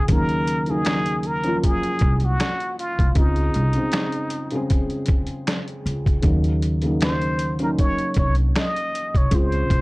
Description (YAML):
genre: lo-fi hip hop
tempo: 78 BPM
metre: 4/4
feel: swing 56% on 16ths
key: unclear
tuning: A4 = 440 Hz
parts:
  - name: trumpet with plunger mute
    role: melody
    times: 0.0-9.8 s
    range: Eb4 to Eb5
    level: -26 LUFS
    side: equal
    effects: none
  - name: felt-muted upright piano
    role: accompaniment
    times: 0.0-9.8 s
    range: Db3 to Ab4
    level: -26 LUFS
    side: equal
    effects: none
  - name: upright bass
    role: bass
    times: 0.0-9.8 s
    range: C2 to Eb2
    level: -22 LUFS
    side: equal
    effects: tube saturation
  - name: trip hop sampler-style drum kit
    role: drums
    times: 0.1-9.8 s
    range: finger snaps, hi-hat, kick drum, snare drum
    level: -21 LUFS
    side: equal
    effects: none
room: small room ambience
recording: dry, gritty hardware recording, cassette tape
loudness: -19 LUFS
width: side -23 dB against mid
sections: 0.0-9.8 A section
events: none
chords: 0.1 Ebm7; 3.2 Dbmaj7; 6.2 Ebm7; 9.3 Dbmaj7